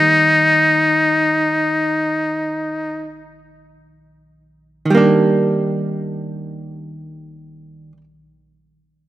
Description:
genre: jazz ballad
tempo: free time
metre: none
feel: none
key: Eb major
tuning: A4 = 440 Hz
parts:
  - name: trumpet with metal mute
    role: melody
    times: 0.0-3.2 s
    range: Eb4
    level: -14 LUFS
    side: left 1 dB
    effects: none
  - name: archtop guitar, miked and amplified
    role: accompaniment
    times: 0.0-8.0 s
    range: Eb3 to D4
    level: -18 LUFS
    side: right 2 dB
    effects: none
room: moderate lush hall reverb, RT60 2.4 s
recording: rough home demo mix, faint mains hum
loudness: -14 LUFS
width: side -14 dB against mid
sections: 0.0-4.9 A section; 4.9-9.1 B section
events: slowing down 0.0-4.9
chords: 0.0 Eb; 4.9 Ebmaj7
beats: free time

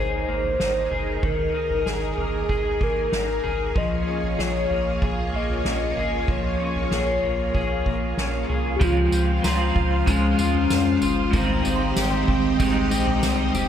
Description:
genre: dream pop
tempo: 95 BPM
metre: 4/4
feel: straight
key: Ab major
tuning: A4 = 440 Hz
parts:
  - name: hollow clarinet-like synth lead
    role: melody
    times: 0.0-13.5 s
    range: C4 to F5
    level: -26 LUFS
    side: left 1 dB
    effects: chorus, phaser, dub echo
  - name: string machine, violins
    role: sustained chords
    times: 0.0-13.7 s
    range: Bb3 to F5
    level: -30 LUFS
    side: equal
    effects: ensemble chorus
  - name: electric guitar at the edge of break-up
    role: arpeggios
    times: 0.0-13.7 s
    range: Eb3 to Ab4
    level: -27 LUFS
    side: left 4 dB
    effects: analog chorus, dub echo
  - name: saturated sub bass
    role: bass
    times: 0.0-13.7 s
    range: F1 to F2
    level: -27 LUFS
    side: equal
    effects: none
  - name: soft-mallet drum kit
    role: drums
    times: 0.4-13.7 s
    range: kick drum, snare drum, tambourine, toms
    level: -28 LUFS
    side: right 1 dB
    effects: none
  - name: electric guitar at the edge of break-up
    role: accompaniment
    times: 8.8-13.7 s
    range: Ab2 to F4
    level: -28 LUFS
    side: right 2 dB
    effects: tremolo, analog chorus, dub echo
  - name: synth chime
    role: texture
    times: 9.4-13.0 s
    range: F5 to C6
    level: -36 LUFS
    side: right 2 dB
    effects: ensemble chorus, phaser, dub echo
room: moderate echo chamber reverb, RT60 2.5 s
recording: echo-heavy mix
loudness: -20 LUFS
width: side -9 dB against mid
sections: 0.0-8.8 A section; 8.8-13.7 B section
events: none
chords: 0.0 Absus2; 3.8 Bbm7; 8.8 Dbmaj7; 11.3 Abmaj7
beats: 0.60 | 1.23 1.86 2.49 3.12 | 3.75 4.39 5.02 5.65 | 6.28 6.91 7.54 8.18 | 8.81 9.44 10.07 10.70 | 11.33 11.97 12.60 13.23

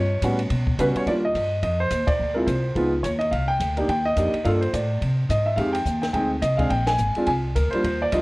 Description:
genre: jazz piano trio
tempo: 213 BPM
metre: 4/4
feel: swing 60% on 8ths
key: Eb major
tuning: A4 = 440 Hz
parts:
  - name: warm grand piano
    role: melody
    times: 0.0-8.2 s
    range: G3 to Ab5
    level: -22 LUFS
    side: equal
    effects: plate reverb
  - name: upright bass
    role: bass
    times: 0.0-8.2 s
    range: Ab1 to C#3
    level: -25 LUFS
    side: equal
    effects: none
  - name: compact cocktail drum kit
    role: drums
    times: 0.2-8.2 s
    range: hi-hat, kick drum, ride cymbal, snare drum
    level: -31 LUFS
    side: left 1 dB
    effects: none
room: moderate studio reverb, RT60 0.9 s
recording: worn, warbling old tape, cassette tape, warbly pitch drift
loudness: -20 LUFS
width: side -22 dB against mid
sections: 0.0-1.1 A section; 1.1-8.2 B section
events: band accent 2.1, 6.8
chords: 0.0 Gmaj9#11; 1.1 Ebmaj7; 2.2 D7(no3); 2.8 Db9; 3.3 Cm9; 4.5 Gm9; 5.0 Ab; 5.6 Fm9; 6.7 Bb9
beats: 0.22 0.50 0.79 | 1.07 1.35 1.63 1.91 | 2.19 2.48 2.76 3.04 | 3.32 3.60 3.89 4.17 | 4.45 4.73 5.01 5.30 | 5.58 5.86 6.14 6.42 | 6.71 6.99 7.27 7.55 | 7.84 8.12

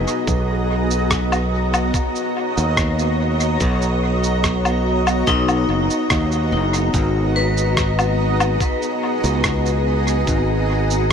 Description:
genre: ambient dub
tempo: 72 BPM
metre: 4/4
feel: straight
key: unclear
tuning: A4 = 440 Hz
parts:
  - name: granular cloud pad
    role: sustained chords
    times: 0.0-11.1 s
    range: B3 to A#5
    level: -21 LUFS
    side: right 1 dB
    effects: built-in reverb
  - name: vibraphone with hard mallets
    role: arpeggios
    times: 0.0-11.1 s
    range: D#4 to B4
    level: -25 LUFS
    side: left 5 dB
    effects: dub echo
  - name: modern bright fingered electric bass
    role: bass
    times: 0.0-11.1 s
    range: F#1 to D#2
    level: -20 LUFS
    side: equal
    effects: none
  - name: electronic cabasa, rim click and woodblock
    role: drums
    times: 0.1-11.1 s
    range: none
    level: -25 LUFS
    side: equal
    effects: dub echo
  - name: electronic kick drum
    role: drums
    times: 0.3-11.1 s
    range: none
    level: -23 LUFS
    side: equal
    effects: none
room: light reverb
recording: none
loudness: -16 LUFS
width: side -7 dB against mid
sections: 0.0-11.1 A section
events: none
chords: 0.0 Bmaj9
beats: | 0.28 1.11 1.94 2.77 | 3.61 4.44 5.28 6.11 | 6.94 7.78 8.61 9.44 | 10.28 11.11

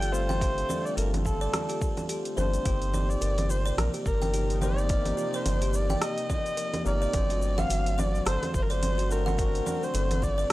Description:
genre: organic downtempo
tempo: 107 BPM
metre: 4/4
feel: swing 57% on 16ths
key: unclear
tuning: A4 = 437 Hz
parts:
  - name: dark kamancheh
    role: melody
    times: 0.0-10.5 s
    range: A4 to G5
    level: -31 LUFS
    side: equal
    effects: tape echo
  - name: tine electric piano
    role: accompaniment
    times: 0.0-10.5 s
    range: F#3 to C5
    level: -36 LUFS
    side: left 2 dB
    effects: fast stereo tremolo, sidechain pumping, analog delay
  - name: airy breathy pad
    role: sustained chords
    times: 0.0-10.5 s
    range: C3 to A4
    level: -39 LUFS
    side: right 1 dB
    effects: chorus, sidechain pumping
  - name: buzzing kalimba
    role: arpeggios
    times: 0.0-10.5 s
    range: F4 to G5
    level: -36 LUFS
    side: right 1 dB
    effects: none
  - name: round analog bass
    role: bass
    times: 0.0-10.4 s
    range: G1 to Bb1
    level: -28 LUFS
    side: equal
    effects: transformer saturation, sidechain pumping
  - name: deep house drum kit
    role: drums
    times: 0.0-10.5 s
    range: cabasa, congas, hi-hat, rim click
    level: -33 LUFS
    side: right 1 dB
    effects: studio reverb
  - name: electronic kick drum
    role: drums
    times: 0.4-10.4 s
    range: none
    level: -30 LUFS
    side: equal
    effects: studio reverb
room: little or no reverb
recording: dry, gritty hardware recording, cassette tape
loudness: -25 LUFS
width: side -17 dB against mid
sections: 0.0-10.5 A section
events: none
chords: 0.0 F/G; 2.7 Cm7/G; 7.1 D7/G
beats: | 0.41 0.97 1.53 2.10 | 2.66 3.22 3.78 4.34 | 4.90 5.46 6.02 6.58 | 7.14 7.70 8.26 8.82 | 9.39 9.95 10.51

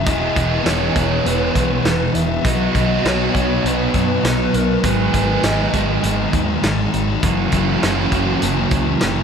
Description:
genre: rock, shoegaze and dream pop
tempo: 100 BPM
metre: 4/4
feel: straight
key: unclear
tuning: A4 = 444 Hz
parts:
  - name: pure sine lead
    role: melody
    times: 0.0-6.0 s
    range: A#4 to E5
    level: -24 LUFS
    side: equal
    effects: chorus, diffuse ambient delay
  - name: twelve-string electric guitar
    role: arpeggios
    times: 0.0-9.2 s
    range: D#3 to G#4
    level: -27 LUFS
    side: right 6 dB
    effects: lush chorus, diffuse ambient delay
  - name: overdriven electric guitar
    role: riff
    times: 0.0-9.2 s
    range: E2 to G#4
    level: -21 LUFS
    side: right 7 dB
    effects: reverse reverb
  - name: thick fuzz guitar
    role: riff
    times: 0.0-9.2 s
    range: E2 to B3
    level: -20 LUFS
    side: left 7 dB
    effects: distortion, analog chorus
  - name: vintage muted fingered electric bass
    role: bass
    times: 0.0-9.2 s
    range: E1 to F#2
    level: -23 LUFS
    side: equal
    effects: none
  - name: loose indie drum kit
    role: drums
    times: 0.1-9.2 s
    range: hi-hat, kick drum, snare drum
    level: -23 LUFS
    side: equal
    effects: none
room: wet lush hall reverb, RT60 2.8 s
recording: dreamy mix soaked in reverb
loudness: -15 LUFS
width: side -7 dB against mid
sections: 0.0-9.2 A section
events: none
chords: 0.1 Emaj7; 2.4 B; 4.8 G#m7; 7.2 F#7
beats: | 0.07 0.66 1.25 1.85 | 2.45 3.04 3.64 4.24 | 4.83 5.43 6.03 6.62 | 7.22 7.82 8.42 9.02

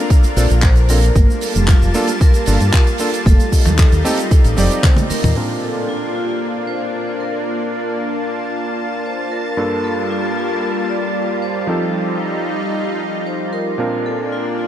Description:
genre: nu-disco, nu disco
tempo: 114 BPM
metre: 4/4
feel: straight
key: Bb major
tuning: A4 = 440 Hz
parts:
  - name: lush unison pad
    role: sustained chords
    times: 0.0-14.7 s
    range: G3 to A5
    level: -21 LUFS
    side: equal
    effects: chorus, sidechain pumping
  - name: electronic kick drum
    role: drums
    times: 0.1-4.9 s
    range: none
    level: -11 LUFS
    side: equal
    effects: none
  - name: tight funk drum kit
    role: drums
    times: 0.1-5.3 s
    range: handclaps, hi-hat, shaker, toms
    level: -22 LUFS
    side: equal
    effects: none
  - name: fingered electric bass with an envelope filter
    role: bass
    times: 0.2-5.3 s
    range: F1 to G2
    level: -15 LUFS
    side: equal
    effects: none
  - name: warm electric grand piano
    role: accompaniment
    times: 0.4-14.7 s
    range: G2 to D5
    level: -24 LUFS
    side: right 1 dB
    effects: sidechain pumping, low-pass filter, diffuse ambient delay
  - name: vibraphone with hard mallets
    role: melody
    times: 0.6-14.7 s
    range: F4 to D5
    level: -26 LUFS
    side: left 1 dB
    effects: ping-pong delay
  - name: congas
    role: percussion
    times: 1.2-5.1 s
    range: none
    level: -27 LUFS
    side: right 4 dB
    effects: none
room: light reverb, studio reverb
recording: none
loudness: -14 LUFS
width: side -11 dB against mid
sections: 0.0-5.4 A section; 5.4-14.7 B section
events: drum fill 4.6-5.4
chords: 0.0 Bbmaj7; 1.2 Gm9; 3.3 F9; 5.4 Bbmaj7; 9.6 Gm9; 11.7 F9; 13.8 Bb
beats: 0.11 0.63 | 1.16 1.69 2.21 2.74 | 3.26 3.79 4.32 4.84 | 5.37 5.89 6.42 6.95 | 7.47 8.00 8.53 9.05 | 9.58 10.11 10.63 11.16 | 11.69 12.21 12.74 13.26 | 13.79 14.32

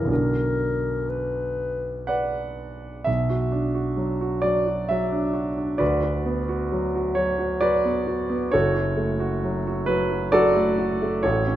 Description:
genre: classical, romantic duo for clarinet and grand piano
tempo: 66 BPM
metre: 3/4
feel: rubato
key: B minor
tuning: A4 = 440 Hz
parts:
  - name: mellow clarinet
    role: melody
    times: 0.0-2.1 s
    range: A#4 to B4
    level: -27 LUFS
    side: left 4 dB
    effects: none
  - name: clear concert grand piano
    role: accompaniment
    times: 0.0-11.6 s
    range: F#1 to F#5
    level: -21 LUFS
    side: right 1 dB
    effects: none
room: moderate recital hall reverb, RT60 1.6 s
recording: none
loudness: -21 LUFS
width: side -12 dB against mid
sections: 0.0-3.1 A section; 3.1-11.6 B section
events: none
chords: 0.1 Bm; 5.8 Bm/D; 8.5 F#m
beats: | 0.09 1.07 2.10 | 3.07 3.99 4.90 | 5.81 6.73 7.63 | 8.54 9.44 10.34 | 11.24

